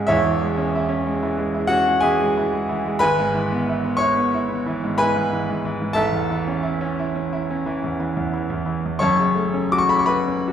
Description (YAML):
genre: classical, romantic nocturne for solo piano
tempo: 61 BPM (dotted quarters)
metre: 9/8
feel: uneven beats, rubato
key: A major from 3.0 s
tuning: A4 = 435 Hz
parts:
  - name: bright concert grand piano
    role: solo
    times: 0.0-10.5 s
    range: E1 to D6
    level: -18 LUFS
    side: equal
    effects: none
room: wet recital hall reverb, RT60 1.6 s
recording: heard from further back in the room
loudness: -19 LUFS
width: side -9 dB against mid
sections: 0.0-10.5 A section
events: none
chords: 0.1 C#m/E; 3.0 E/G#; 6.0 A; 9.0 F#m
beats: | 0.11 1.07 2.04 | 3.00 3.98 5.00 | 5.98 6.98 8.01 | 9.01 10.09